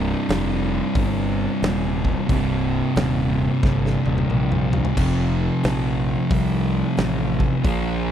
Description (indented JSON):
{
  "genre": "stoner and doom metal",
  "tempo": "90 BPM",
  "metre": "4/4",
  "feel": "swing 63% on 8ths",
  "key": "C dorian",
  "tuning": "A4 = 440 Hz",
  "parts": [
    { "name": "fuzz guitar", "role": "riff", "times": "0.0-8.1 s", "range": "C2 to Bb3", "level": "-21 LUFS", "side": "equal", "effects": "distortion" },
    { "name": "fuzz fingered electric bass", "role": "bass", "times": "0.0-8.1 s", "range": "C1 to C2", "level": "-25 LUFS", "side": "equal", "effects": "overdrive" },
    { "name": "big rock drum kit", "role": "drums", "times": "0.3-7.8 s", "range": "crash cymbal, hi-hat, kick drum, snare drum, toms", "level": "-25 LUFS", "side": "equal", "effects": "none" }
  ],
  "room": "little or no reverb",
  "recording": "dry, close 1970s-style studio recording",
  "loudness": "-19 LUFS",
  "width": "side -10 dB against mid",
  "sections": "0.0-8.1 A section",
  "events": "drum fill 3.6-5.0",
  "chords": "0.0 Cm; 5.0 F"
}